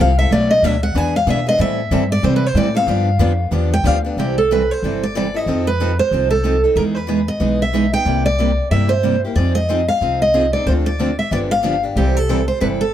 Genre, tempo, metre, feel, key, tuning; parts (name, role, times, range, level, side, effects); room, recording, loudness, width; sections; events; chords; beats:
acoustic string swing (jazz manouche); 185 BPM; 4/4; swing 60% on 8ths; C major; A4 = 440 Hz
picked steel-string acoustic guitar; melody; 0.0-12.9 s; G4 to G#5; -18 LUFS; right 1 dB
picked steel-string acoustic guitar; accompaniment; 0.0-12.8 s; B2 to A4; -23 LUFS; left 4 dB
picked steel-string acoustic guitar; accompaniment; 0.0-12.8 s; B2 to B4; -23 LUFS; right 6 dB
upright bass; bass; 0.0-12.9 s; G1 to C3; -19 LUFS; equal
moderate spring reverb, RT60 1.2 s; heard from further back in the room; -14 LUFS; side -11 dB against mid
0.0-4.2 A section; 4.2-12.9 B section
steel-string acoustic guitar solo 0.0-4.2
0.3 Bm7; 1.0 E7; 1.6 Am7; 2.9 G7; 4.2 C6; 5.5 F7#11; 6.8 Emaj7; 8.1 C7; 9.4 Fm7; 10.7 Dm7; 11.3 G7; 12.0 C6
| 0.32 0.64 0.96 1.28 | 1.60 1.92 2.24 2.56 | 2.88 3.21 3.53 3.85 | 4.17 4.50 4.82 5.14 | 5.46 5.79 6.11 6.44 | 6.76 7.09 7.41 7.74 | 8.06 8.39 8.71 9.04 | 9.36 9.69 10.01 10.34 | 10.66 10.99 11.31 11.64 | 11.96 12.29 12.61